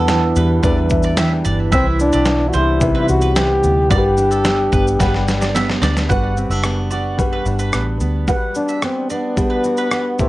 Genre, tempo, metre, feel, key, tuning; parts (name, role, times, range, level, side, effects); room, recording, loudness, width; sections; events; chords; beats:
acoustic pop; 110 BPM; 4/4; straight; G major; A4 = 440 Hz
trombone with bucket mute; melody; 0.0-10.3 s; B3 to G4; -19 LUFS; left 1 dB; digital delay
dark upright piano; accompaniment; 0.0-10.3 s; G3 to G5; -25 LUFS; left 3 dB
fingerpicked steel-string acoustic guitar; accompaniment; 0.0-10.3 s; E2 to F#4; -21 LUFS; right 2 dB
mandolin; arpeggios; 0.0-10.0 s; A4 to F#5; -25 LUFS; right 4 dB; digital delay
vintage muted fingered electric bass; bass; 0.0-8.3 s; F#1 to E2; -19 LUFS; equal
dusty soul sampler-style drum kit; drums; 0.1-10.3 s; kick drum, rim click, shaker, snare drum; -20 LUFS; equal
moderate studio reverb, RT60 0.6 s; worn, warbling old tape, cassette tape, warbly pitch drift; -14 LUFS; side -17 dB against mid
0.0-6.1 A section; 6.1-8.3 B section; 8.3-10.3 C section
upright piano fill 0.6-1.7; drum fill 5.0-6.1
0.0 Em7; 1.7 Cmaj7; 3.9 Gmaj7
0.10 0.64 1.18 | 1.73 2.27 2.82 3.36 | 3.91 4.45 5.00 5.54 | 6.09 6.64 7.18 7.73 | 8.28 8.83 9.37 9.92